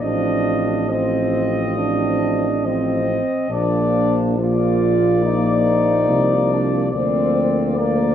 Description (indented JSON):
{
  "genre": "classical, hymn-like piece for brass band",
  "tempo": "70 BPM",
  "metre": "4/4",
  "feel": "rubato",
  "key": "Bb major",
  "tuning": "A4 = 440 Hz",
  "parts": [
    { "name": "dark trumpet section", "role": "melody", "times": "0.0-8.1 s", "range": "D5 to Eb5", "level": "-23 LUFS", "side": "left 4 dB", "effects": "none" },
    { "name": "warm French horn section", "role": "second line", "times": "0.0-8.1 s", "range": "Bb3 to F4", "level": "-21 LUFS", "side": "right 5 dB", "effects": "none" },
    { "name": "clear trombone", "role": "accompaniment", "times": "0.0-8.1 s", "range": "F3", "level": "-26 LUFS", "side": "left 1 dB", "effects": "none" },
    { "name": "warm euphonium", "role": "accompaniment", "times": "0.0-8.1 s", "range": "Bb3 to C4", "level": "-27 LUFS", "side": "left 1 dB", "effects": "none" },
    { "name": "warm tuba", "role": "bass", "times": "0.0-8.1 s", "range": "A1 to D2", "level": "-22 LUFS", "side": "left 1 dB", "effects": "none" }
  ],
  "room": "wet stone room reverb, RT60 1.1 s",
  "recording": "heard from further back in the room, nothing above 7.8 kHz",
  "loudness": "-16 LUFS",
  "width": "side -9 dB against mid",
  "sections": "0.0-8.1 A section",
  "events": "none",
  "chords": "0.0 F7/A; 3.5 Bb; 6.9 Bb/D"
}